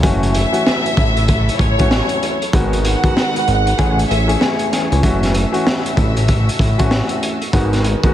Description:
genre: hip hop, boom-bap hip-hop.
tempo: 96 BPM.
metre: 4/4.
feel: swing 61% on 16ths.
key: F# dorian.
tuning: A4 = 440 Hz.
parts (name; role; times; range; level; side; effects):
warm upright piano; accompaniment; 0.0-8.1 s; D#3 to G#4; -20 LUFS; left 1 dB; cassette tape, high-pass filter, low-pass filter.
rich studio string section; sustained chords; 0.0-8.1 s; F#3 to E5; -28 LUFS; left 2 dB; high-pass filter, low-pass filter.
fat analog bass; bass; 0.0-8.0 s; F#1 to C#2; -17 LUFS; equal; none.
crunchy breakbeat drum kit; drums; 0.0-8.1 s; hi-hat, kick drum, snare drum; -18 LUFS; equal; vintage 12-bit sampler grit.
warm studio violin section; melody; 0.3-4.4 s; C#5 to F#5; -20 LUFS; right 1 dB; high-pass filter, low-pass filter.
room: little or no reverb.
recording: heavily compressed radio sound.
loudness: -13 LUFS.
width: side -11 dB against mid.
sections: 0.0-8.1 A section.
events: none.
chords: 0.0 F#m7; 2.5 G#m7; 3.8 Amaj7; 5.0 F#m7; 7.5 G#m7.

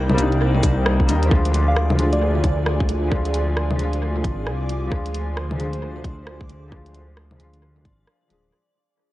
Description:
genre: future garage.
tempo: 133 BPM.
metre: 4/4.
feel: swing 62% on 16ths.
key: unclear.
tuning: A4 = 439 Hz.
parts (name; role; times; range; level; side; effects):
felt-muted upright piano; accompaniment; 0.0-8.6 s; F3 to Ab4; -27 LUFS; left 2 dB; sidechain pumping, low-pass filter, tape echo.
airy breathy pad; sustained chords; 0.0-8.5 s; Eb3 to Ab5; -30 LUFS; right 1 dB; chorus, sidechain pumping.
swelling detuned saw bass; bass; 0.0-8.5 s; D1 to Eb2; -21 LUFS; equal; tube saturation, sidechain pumping.
backwards swelling texture; texture; 0.0-8.5 s; D5; -36 LUFS; right 3 dB; built-in reverb.
garage drum kit; drums; 0.1-8.4 s; bongos, cabasa, hi-hat, rim click; -26 LUFS; left 1 dB; tape echo.
electronic kick drum; drums; 0.6-8.0 s; none; -21 LUFS; equal; none.
soft struck synth lead; melody; 1.7-2.6 s; D5 to F5; -28 LUFS; equal; chorus, tape echo.
room: light reverb, digital ambience.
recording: echo-heavy mix, cassette tape, nothing above 10.3 kHz.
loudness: -18 LUFS.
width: side -16 dB against mid.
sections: 0.0-1.3 A section; 1.3-8.5 B section.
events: fade-out 1.3-8.5; filter sweep on detuned saw bass 1.3-8.5.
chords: 0.0 Cm7; 1.3 Ddim.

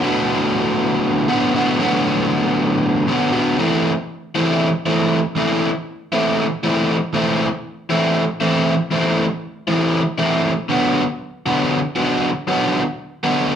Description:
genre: rock.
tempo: 236 BPM (eighths).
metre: 7/8.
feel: straight.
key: A dorian.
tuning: A4 = 439 Hz.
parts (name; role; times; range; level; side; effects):
crunchy overdriven guitar; solo; 0.0-13.6 s; A2 to F#4; -16 LUFS; equal; none.
room: moderate large studio reverb, RT60 0.9 s.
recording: band playing live in one room.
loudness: -16 LUFS.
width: side -8 dB against mid.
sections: 0.0-3.6 A section; 3.6-13.6 B section.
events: none.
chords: 0.0 Bm/A; 3.6 Am; 10.7 Bm.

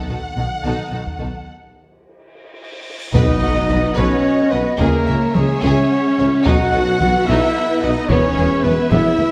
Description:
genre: cinematic, epic orchestral film score.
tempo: 73 BPM (dotted quarters).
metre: 6/8.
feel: straight.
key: B major.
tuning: A4 = 437 Hz.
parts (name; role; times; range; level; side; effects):
warm symphonic violin section; melody; 0.0-9.2 s; B3 to F#5; -30 LUFS; equal; none.
warm symphonic violin section; second line; 0.0-9.3 s; G#4 to F#5; -29 LUFS; equal; none.
warm studio viola section; accompaniment; 0.0-9.3 s; G#3 to F#4; -28 LUFS; equal; none.
mellow French horn section; sustained chords; 0.0-9.3 s; D#3 to A4; -23 LUFS; equal; none.
dark symphonic cello section; bass; 0.1-9.0 s; E2 to C#3; -27 LUFS; equal; none.
rich symphonic double bass section; bass; 0.1-9.0 s; E1 to C#2; -27 LUFS; equal; none.
taiko ensemble; drums; 1.1-9.3 s; none; -25 LUFS; equal; none.
cymbal swell and impact; sound effects; 2.4-4.8 s; none; -34 LUFS; equal; none.
warm symphonic string section; sustained chords; 3.1-9.3 s; G#3 to F#5; -27 LUFS; equal; none.
warm trumpet; stabs; 3.1-9.3 s; G#4 to F#5; -26 LUFS; equal; none.
timpani; percussion; 3.1-3.9, 6.5-7.2 s; B2; -29 LUFS; equal; none.
mellow hollow flute section; second line; 3.2-9.3 s; B4 to F#5; -30 LUFS; equal; none.
mellow tuba; bass; 3.2-9.0 s; E1 to C#2; -27 LUFS; equal; none.
room: wet scoring stage reverb, RT60 1.5 s.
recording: none.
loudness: -17 LUFS.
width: mono.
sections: 0.0-3.1 A section; 3.1-9.3 B section.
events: break 1.5-3.1; drum fill 2.3-3.1, 8.9-9.3; cymbal swell 2.4-3.1; impact 3.1-4.8.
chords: 0.0 B7; 1.5 N.C.; 3.1 B; 4.8 C#m; 6.5 B7; 8.1 E.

